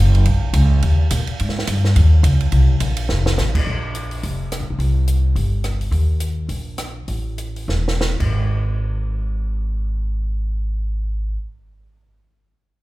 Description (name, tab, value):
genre	jazz, small-group swing and bop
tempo	180-212 BPM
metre	4/4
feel	swing 59% on 8ths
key	Ab major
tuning	A4 = 440 Hz
part	upright bass	bass	0.0-11.4 s	E1 to Bb2	-17 LUFS	equal	none
part	compact cocktail drum kit	drums	0.1-8.3 s	crash cymbal, hi-hat, kick drum, ride cymbal, rim click, snare drum	-26 LUFS	right 2 dB	none
room	light reverb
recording	none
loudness	-17 LUFS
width	side -18 dB against mid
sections	0.0-3.7 A section; 3.7-8.3 B section; 8.3-11.0 C section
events	drum fill 3.1, 7.7-8.3; slowing down 5.9-8.3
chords	none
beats	| 0.27 0.55 0.83 1.11 | 1.40 1.68 1.96 2.25 | 2.53 2.81 3.10 3.38 | 3.66 3.94 4.23 4.51 | 4.79 5.07 5.36 5.64 | 5.92 6.21 6.49 6.78 | 7.08 7.38 7.68 8.00 | 8.33 8.66 8.99 9.32 | 9.66 9.99 10.32 10.65